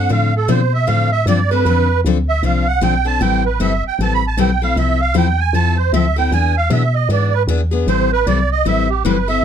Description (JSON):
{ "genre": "acoustic string swing (jazz manouche)", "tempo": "154 BPM", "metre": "4/4", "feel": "swing 61% on 8ths", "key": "A minor", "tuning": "A4 = 435 Hz", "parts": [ { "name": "musette accordion", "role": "melody", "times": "0.0-9.4 s", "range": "G4 to B5", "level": "-18 LUFS", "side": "right 6 dB", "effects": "none" }, { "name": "picked steel-string acoustic guitar", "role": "accompaniment", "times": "0.0-9.4 s", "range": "D3 to A4", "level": "-19 LUFS", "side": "left 8 dB", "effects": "none" }, { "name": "woody FM bass", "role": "bass", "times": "0.0-9.4 s", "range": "G1 to B2", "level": "-17 LUFS", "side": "equal", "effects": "none" } ], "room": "light reverb", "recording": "close, detailed microphones", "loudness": "-13 LUFS", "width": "side -8 dB against mid", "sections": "0.0-9.4 A section", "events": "accordion solo 0.0-9.4", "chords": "0.0 Dm7; 3.2 Am7; 4.8 Fmaj7; 6.3 E7; 7.9 Am7", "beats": "| 0.10 0.49 0.88 1.27 | 1.66 2.05 2.44 2.83 | 3.22 3.60 3.99 4.38 | 4.77 5.16 5.55 5.94 | 6.33 6.71 7.10 7.49 | 7.88 8.27 8.65 9.04 | 9.43" }